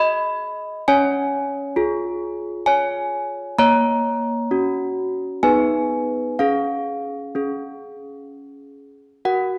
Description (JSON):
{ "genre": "classical, tune for handbells", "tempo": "65 BPM", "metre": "3/4", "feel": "straight", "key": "unclear", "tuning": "A4 = 444 Hz", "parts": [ { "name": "desk bells", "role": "solo", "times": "0.0-9.6 s", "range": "A#3 to B5", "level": "-22 LUFS", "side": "equal", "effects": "none" } ], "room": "moderate recital hall reverb, RT60 1.7 s", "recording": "dark, warm production", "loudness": "-21 LUFS", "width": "mono", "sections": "0.0-9.2 A section", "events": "none", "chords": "0.0 G#m; 0.9 C#; 3.6 F#/A#; 5.4 G#m/B; 6.4 C#", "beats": "| 0.85 1.76 2.67 | 3.58 4.50 5.43 | 6.38 7.34 8.30 | 9.25" }